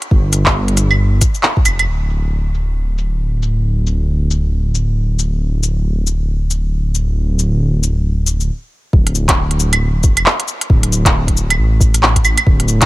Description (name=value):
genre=future garage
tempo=136 BPM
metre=4/4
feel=swing 60% on 16ths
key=D minor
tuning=A4 = 439 Hz
part: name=organic electronic drum kit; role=drums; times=0.0-12.9 s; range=cabasa, claves, handclaps, hi-hat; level=-16 LUFS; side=right 1 dB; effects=low-pass filter on perc, low-pass filter on snare, low-pass filter on hats, low-pass filter on room
part: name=dark detuned saw bass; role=bass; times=0.1-12.9 s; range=D1 to A1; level=-15 LUFS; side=equal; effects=sidechain pumping
part: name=electronic kick drum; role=drums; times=0.1-1.6, 8.9-12.9 s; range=none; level=-13 LUFS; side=equal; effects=none
room=little or no reverb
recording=none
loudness=-13 LUFS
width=side -18 dB against mid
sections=0.0-1.9 A section; 1.9-8.9 B section; 8.9-12.9 C section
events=filter sweep on drum 1.9-8.9; stop 8.5-8.9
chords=none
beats=| 0.12 0.56 1.00 1.44 | 1.88 2.32 2.76 3.20 | 3.65 4.09 4.53 4.97 | 5.41 5.85 6.29 6.73 | 7.17 7.62 8.06 8.50 | 8.94 9.38 9.82 10.26 | 10.70 11.14 11.59 12.03 | 12.47